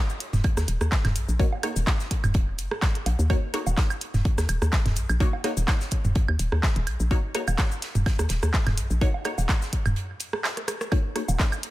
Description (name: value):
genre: minimal techno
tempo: 126 BPM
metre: 4/4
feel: swing 54% on 16ths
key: Eb minor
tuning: A4 = 440 Hz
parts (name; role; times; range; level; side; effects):
- minimal click drum kit; drums; 0.1-11.7 s; cabasa, handclaps, hi-hat, rim click; -32 LUFS; equal; overdrive
- loose indie drum kit; drums; 0.2-11.7 s; hi-hat, snare drum; -40 LUFS; right 3 dB; high-pass filter on hats, high-pass filter on snare, high-pass filter on room
- hollow knocking FM bass; bass; 0.3-11.4 s; Eb1 to Eb2; -25 LUFS; equal; tube saturation, sidechain pumping
- booming analog drum machine; percussion; 0.3-11.6 s; rim click, toms, woodblock; -30 LUFS; right 2 dB; dub echo
- electronic kick drum; drums; 0.4-11.5 s; none; -24 LUFS; equal; none
- filtered dub chord stab; stabs; 1.4-11.2 s; Bb3 to Db5; -34 LUFS; left 2 dB; phaser, dub echo
room: little or no reverb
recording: none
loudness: -22 LUFS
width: side -16 dB against mid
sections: 0.0-11.7 A section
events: break 10.0-10.9; drum fill 10.6-10.9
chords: 0.0 Ebm7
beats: 0.44 0.92 | 1.40 1.87 2.35 2.82 | 3.30 3.78 4.25 4.73 | 5.20 5.68 6.16 6.63 | 7.11 7.58 8.06 8.54 | 9.01 9.49 9.97 10.44 | 10.92 11.39